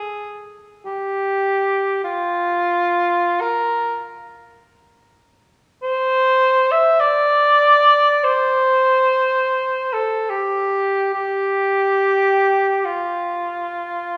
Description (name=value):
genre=classical, free, expressive piece for unaccompanied cor anglais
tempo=34-53 BPM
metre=4/4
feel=rubato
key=unclear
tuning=A4 = 440 Hz
part: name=mellow cor anglais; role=solo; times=0.0-14.2 s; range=F4 to E5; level=-18 LUFS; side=equal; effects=none
room=wet concert hall reverb, RT60 2.3 s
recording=studio ambience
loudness=-18 LUFS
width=mono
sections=0.0-14.2 A section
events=none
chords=none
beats=| 0.84 2.03 3.38 4.62 | 5.83 7.01 8.24 9.57 | 11.14 12.86